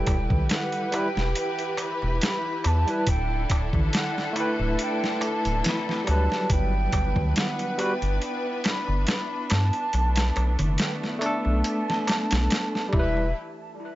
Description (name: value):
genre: trip hop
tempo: 70 BPM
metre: 4/4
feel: swing 54% on 16ths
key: E minor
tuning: A4 = 439 Hz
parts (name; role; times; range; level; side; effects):
- mellow jazz flute; melody; 0.0-13.3 s; E5 to B5; -31 LUFS; right 2 dB; tape echo
- barky tine electric piano; accompaniment; 0.0-13.3 s; F#3 to B4; -29 LUFS; equal; tremolo, tape echo
- rich studio string section; sustained chords; 0.0-13.3 s; D3 to B4; -32 LUFS; left 1 dB; vintage 12-bit sampler grit
- round analog bass; bass; 0.0-13.3 s; D1 to G2; -24 LUFS; equal; none
- flickering grainy texture; texture; 0.3-13.4 s; E4 to E5; -41 LUFS; left 2 dB; built-in reverb
- boom bap sampler-style drum kit; drums; 0.1-13.1 s; hi-hat, kick drum, snare drum; -26 LUFS; equal; studio reverb
- darbuka; percussion; 0.1-13.3 s; none; -34 LUFS; right 1 dB; none
room: small room ambience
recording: nothing above 7.8 kHz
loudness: -22 LUFS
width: side -15 dB against mid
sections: 0.0-13.4 A section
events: none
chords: 0.0 Em; 3.1 Dsus2; 6.5 Gmaj7; 9.9 Bm7; 12.9 Em; 13.4 N.C.